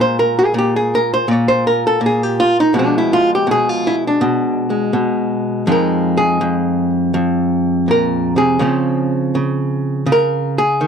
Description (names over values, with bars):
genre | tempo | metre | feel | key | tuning
solo jazz | 82 BPM | 4/4 | swing 67% on 8ths | F minor | A4 = 442 Hz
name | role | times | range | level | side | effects
archtop guitar, miked and amplified | solo | 0.0-10.9 s | F2 to Db5 | -14 LUFS | equal | none
room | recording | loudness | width
moderate booth ambience, RT60 0.3 s | dry, close 1970s-style studio recording | -14 LUFS | side -7 dB against mid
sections
0.0-10.9 A section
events
hollow-body jazz guitar solo 0.0-10.9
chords
0.0 Bb7(no3); 2.7 Bdim7; 5.7 Fm7; 8.6 Dbmaj7